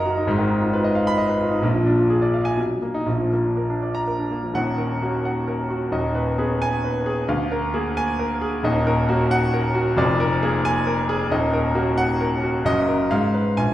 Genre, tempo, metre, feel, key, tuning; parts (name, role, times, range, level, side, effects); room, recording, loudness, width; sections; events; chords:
classical, virtuoso piano study; 119-138 BPM; 3/4; rubato; Eb minor; A4 = 441 Hz
warm grand piano; solo; 0.0-13.7 s; Eb1 to Cb6; -19 LUFS; equal
wet recital hall reverb, RT60 1.2 s; heard from further back in the room; -19 LUFS; side -13 dB against mid
0.0-4.6 A section; 4.6-13.7 B section
0.3 Fm7b5/Ab; 1.6 Bb7; 2.6 Bmaj7; 3.1 Bb; 4.6 Ebm; 5.9 Abm/Eb; 7.3 Bb7/D; 8.6 Ebm; 10.0 Bb7/F; 11.3 Ebm; 12.7 Ebm/Gb; 13.1 Fdim/Ab